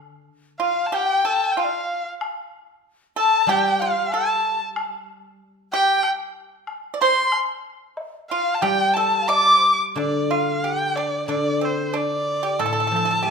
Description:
chinese traditional, Chinese chamber ensemble; 93 BPM; 4/4; rubato; D yu mode; A4 = 440 Hz
guzheng; accompaniment; 0.0-13.3 s; A2 to A3; -27 LUFS; left 3 dB
dark erhu; melody; 0.6-13.3 s; C5 to D6; -21 LUFS; equal
mellow hollow large dizi; second line; 0.6-9.8 s; D5 to D6; -23 LUFS; left 4 dB
pipa; second line; 0.6-13.3 s; C4 to D5; -25 LUFS; right 6 dB
woodblock; percussion; 0.9-9.4 s; -32 LUFS; left 2 dB
moderate recital hall reverb, RT60 1.3 s; minimal, uncompressed stereo recording; -18 LUFS; side -5 dB against mid
0.0-10.0 A section; 10.0-13.3 B section
0.27 0.93 1.57 | 2.22 2.86 3.49 4.13 | 4.77 5.41 6.04 6.68 | 7.33 7.98 8.63 9.29 | 9.96 10.63 11.29 11.95 | 12.59 13.24

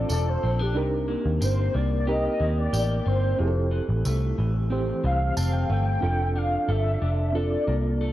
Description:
indie pop, bedroom pop; 91 BPM; 4/4; straight; F major; A4 = 441 Hz
warbly nostalgic lead; melody; 0.0-8.0 s; G4 to G5; -30 LUFS; left 1 dB; ensemble chorus, analog delay
electric guitar through a small old amp; accompaniment; 0.0-8.1 s; F2 to A4; -31 LUFS; left 3 dB; analog chorus, warbly pitch drift
reed electric piano; accompaniment; 0.0-8.1 s; E3 to A5; -31 LUFS; right 3 dB; fast tremolo
vintage muted picked electric bass; bass; 0.0-8.1 s; E1 to Eb2; -24 LUFS; equal
tambourine; percussion; 0.1-5.5 s; -37 LUFS; right 2 dB
little or no reverb; dry, gritty hardware recording, cassette tape; -22 LUFS; side -14 dB against mid
0.0-6.0 A section; 6.0-8.1 B section
soft synth lead solo 0.0-6.0; reed electric piano fill 5.0-6.0
0.0 Dm7; 0.8 Cm7; 3.4 Fmaj7; 6.0 Bbmaj7/F
0.09 | 0.75 1.41 2.07 2.73 | 3.39 4.05 4.71 5.37 | 6.03 6.69 7.35 8.01

